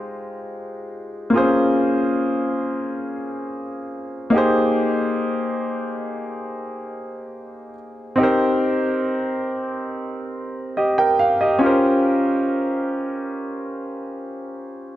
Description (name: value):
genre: R&B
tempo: free time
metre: none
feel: none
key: Bb dorian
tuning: A4 = 438 Hz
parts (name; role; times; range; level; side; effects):
- warm grand piano; solo; 0.0-15.0 s; Ab3 to G5; -20 LUFS; equal; none
room: light reverb, studio reverb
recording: none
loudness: -19 LUFS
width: side -13 dB against mid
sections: 0.0-15.0 A section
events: none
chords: 0.0 Fm9; 1.3 Bbm9; 4.3 Abmaj9; 8.2 Cm7; 11.6 Bbm69